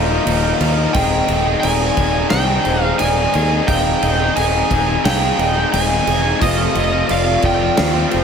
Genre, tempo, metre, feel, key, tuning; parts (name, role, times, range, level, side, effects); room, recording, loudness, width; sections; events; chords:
post-rock; 88 BPM; 4/4; straight; A4 = 437 Hz
overdriven slide guitar; melody; 0.0-8.2 s; Eb5 to Ab5; -20 LUFS; right 1 dB; ping-pong delay
pedal steel guitar; sustained chords; 0.0-8.2 s; Eb4 to F5; -31 LUFS; left 1 dB
vibraphone with medium hard mallets; arpeggios; 0.0-8.2 s; C5 to F5; -24 LUFS; right 2 dB; ping-pong delay
crunchy overdriven guitar; riff; 0.0-8.2 s; Eb2 to Ab4; -23 LUFS; right 10 dB; analog chorus
overdriven electric guitar; riff; 0.0-8.2 s; Eb2 to Ab4; -20 LUFS; left 10 dB
growling fingered electric bass; bass; 0.0-8.2 s; Eb1 to Eb2; -21 LUFS; equal; overdrive
huge arena drum kit; drums; 0.3-8.2 s; crash cymbal, kick drum, snare drum; -22 LUFS; right 2 dB
moderate plate reverb, RT60 2.2 s; dreamy mix soaked in reverb; -14 LUFS; side -6 dB against mid
0.0-8.2 A section
0.0 Ebadd9; 1.0 Abmaj7/Eb; 6.4 Fadd9